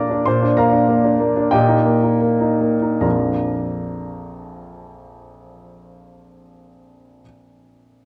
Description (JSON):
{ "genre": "classical, virtuoso piano study", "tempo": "73-95 BPM", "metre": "2/4", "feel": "rubato", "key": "Bb major", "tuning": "A4 = 440 Hz", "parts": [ { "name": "clear baby grand piano", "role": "solo", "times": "0.0-8.1 s", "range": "Bb1 to D6", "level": "-18 LUFS", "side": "equal", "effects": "none" } ], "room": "wet recital hall reverb, RT60 1.7 s", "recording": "worn, warbling old tape, cassette tape, warbly pitch drift", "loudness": "-17 LUFS", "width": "mono", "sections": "0.3-3.0 A section; 3.0-6.3 B section", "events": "slowing down 0.0-3.0", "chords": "0.3 Bb; 1.5 Eb/Bb; 3.0 Bb", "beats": "| 0.25 0.89 | 1.53 2.24 | 3.04 3.85 | 4.67 5.48" }